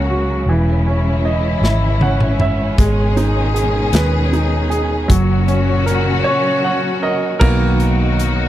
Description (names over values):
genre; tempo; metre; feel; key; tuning
six-eight pop ballad; 52 BPM (dotted quarters); 6/8; straight; B major; A4 = 440 Hz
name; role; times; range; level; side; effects
clear baby grand piano; accompaniment; 0.0-8.5 s; D#3 to F#5; -19 LUFS; right 2 dB; none
warm studio string section; sustained chords; 0.0-8.5 s; A#2 to G#4; -20 LUFS; left 2 dB; none
vintage muted fingered electric bass; bass; 0.0-8.5 s; E1 to D#2; -17 LUFS; equal; none
modern studio drum kit; drums; 1.6-8.4 s; crash cymbal, hi-hat, kick drum, snare drum, toms; -17 LUFS; equal; none
room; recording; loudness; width
small room ambience; dry, close 1970s-style studio recording; -13 LUFS; side -13 dB against mid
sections
0.0-7.4 A section; 7.4-8.5 B section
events
drum fill 1.6-2.8; grand piano fill 1.6-2.8, 6.3-7.4; break 6.3-7.4; grand piano solo 7.4-8.5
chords
0.5 C#madd9/E; 2.8 G#m; 5.1 F#; 7.4 B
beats
| 0.47 1.62 | 2.78 3.94 | 5.10 6.26 | 7.41